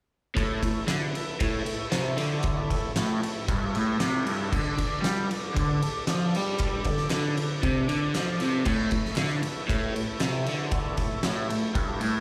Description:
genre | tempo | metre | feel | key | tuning
garage rock duo or trio | 116 BPM | 4/4 | straight | A mixolydian | A4 = 441 Hz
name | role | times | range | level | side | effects
overdriven combo organ | sustained chords | 0.4-12.2 s | D4 to D5 | -38 LUFS | equal | subtle chorus
crunchy overdriven guitar | riff | 0.4-12.2 s | G2 to G3 | -30 LUFS | equal | phaser, slapback echo
oversized low-tuned drum kit | drums | 0.4-12.1 s | crash cymbal, kick drum, ride cymbal, snare drum | -32 LUFS | equal | none
group handclap | percussion | 0.9-11.4 s | none | -42 LUFS | equal | none
room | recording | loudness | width
light reverb | live gig heard through the venue's PA, club reverb | -27 LUFS | mono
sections
0.4-12.2 A section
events
none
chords
0.4 A; 4.5 D5; 8.7 A

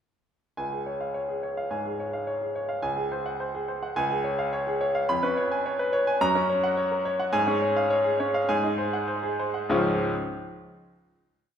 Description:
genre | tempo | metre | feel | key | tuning
classical, virtuoso piano study | 105 BPM | 4/4 | uneven beats, rubato | Db major | A4 = 440 Hz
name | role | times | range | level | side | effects
clear grand piano | solo | 0.6-10.1 s | Db2 to Cb6 | -24 LUFS | equal | none
room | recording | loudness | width
wet recital hall reverb, RT60 1.5 s | recorded in a church or concert hall | -24 LUFS | side -8 dB against mid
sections
0.6-9.7 A section; 9.7-11.6 final chord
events
none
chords
0.6 Db; 2.8 Ab7/Db; 4.0 Db; 5.1 Db7/F; 6.2 Gb; 7.3 Db/Ab; 8.5 Ab7; 9.7 Db

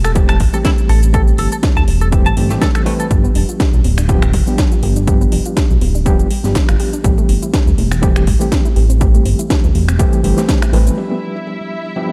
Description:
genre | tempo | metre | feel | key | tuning
nu-disco, nu disco | 122 BPM | 4/4 | swing 55% on 16ths | A minor | A4 = 440 Hz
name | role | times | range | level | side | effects
overdriven reed electric piano | accompaniment | 0.0-12.1 s | E3 to B4 | -22 LUFS | equal | fast tremolo, delay
direct-recorded clean electric guitar | riff | 0.0-3.1 s | A3 to A5 | -25 LUFS | equal | analog chorus, delay
chorused synth bass | bass | 0.0-10.9 s | D1 to D2 | -17 LUFS | equal | sidechain pumping
house drum kit | drums | 0.0-12.1 s | crash cymbal, finger snaps, hi-hat, shaker, snare drum | -26 LUFS | equal | overdrive, low-pass filter on hats, low-pass filter on snare, low-pass filter on perc, low-pass filter on cymbals, low-pass filter on room
electronic kick drum | drums | 0.2-10.6 s | none | -17 LUFS | equal | overdrive
soft round pluck | arpeggios | 3.1-12.1 s | G3 to G4 | -29 LUFS | equal | chorus, sidechain pumping, delay
muted studio string section | sustained chords | 11.0-12.1 s | E4 to E5 | -28 LUFS | equal | sidechain pumping
room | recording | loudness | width
little or no reverb | dark, warm production | -14 LUFS | mono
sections
0.0-11.0 A section; 11.0-12.1 B section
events
filter sweep on drum 11.0-12.1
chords
0.0 Am7; 3.1 G7; 7.0 Am7; 11.0 G7

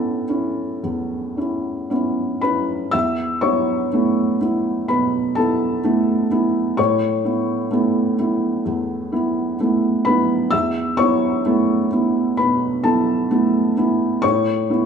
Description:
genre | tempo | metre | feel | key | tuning
neoclassical minimalist piano | 64 BPM | 4/4 | uneven beats, rubato | unclear | A4 = 440 Hz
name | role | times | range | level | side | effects
felt-muted upright piano | solo | 0.0-14.9 s | E2 to E6 | -17 LUFS | equal | none
room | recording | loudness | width
wet large studio reverb, RT60 1.2 s | band playing live in one room | -17 LUFS | side -6 dB against mid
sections
0.0-2.9 A section; 2.9-14.9 B section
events
none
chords
0.0 Esus4

